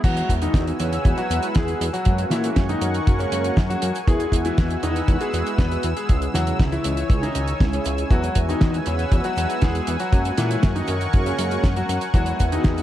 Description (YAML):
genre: italo disco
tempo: 119 BPM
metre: 4/4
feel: straight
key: unclear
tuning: A4 = 440 Hz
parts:
  - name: clear concert grand piano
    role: melody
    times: 0.0-12.8 s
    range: C#3 to B4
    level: -26 LUFS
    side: left 2 dB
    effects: ping-pong delay, shimmer reverb
  - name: lush unison pad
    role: sustained chords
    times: 0.3-12.8 s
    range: A#4 to E6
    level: -29 LUFS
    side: equal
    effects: chorus, shimmer reverb
  - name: mellow synth brass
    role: stabs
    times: 0.0-12.8 s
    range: C#3 to G#4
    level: -30 LUFS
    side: right 2 dB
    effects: chorus, shimmer reverb
  - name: fat analog bass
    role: bass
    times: 0.0-12.8 s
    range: C#2 to A#2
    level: -25 LUFS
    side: equal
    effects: tube saturation
  - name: damped 70s drum kit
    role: drums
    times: 0.0-12.8 s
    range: cabasa, crash cymbal, hi-hat, snare drum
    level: -27 LUFS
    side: right 1 dB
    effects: small room ambience
  - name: kick drum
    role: drums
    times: 0.0-12.7 s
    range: none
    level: -19 LUFS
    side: equal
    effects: small room ambience
room: light reverb, small room ambience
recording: dark, warm production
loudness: -19 LUFS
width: side -12 dB against mid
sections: 0.0-12.8 A section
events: none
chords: 0.0 Eadd9; 2.1 F#add9; 4.1 Eadd9; 6.1 C#m; 8.1 Eadd9; 10.1 F#add9; 12.1 Eadd9